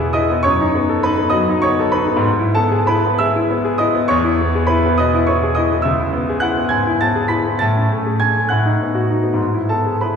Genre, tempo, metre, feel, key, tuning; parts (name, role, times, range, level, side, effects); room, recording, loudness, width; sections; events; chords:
classical, romantic character piece for solo piano; 62-70 BPM (dotted quarters); 6/8; rubato; E major; A4 = 440 Hz
bright concert grand piano; solo; 0.0-10.2 s; C#2 to B6; -14 LUFS; equal
wet scoring stage reverb, RT60 1.9 s; recorded in a church or concert hall; -14 LUFS; side -6 dB against mid
0.0-10.2 A section
0.4 B7/F#; 2.3 E/G#; 4.1 E; 5.9 C#m7; 7.6 Amaj7; 8.5 B7/A; 9.4 E/G#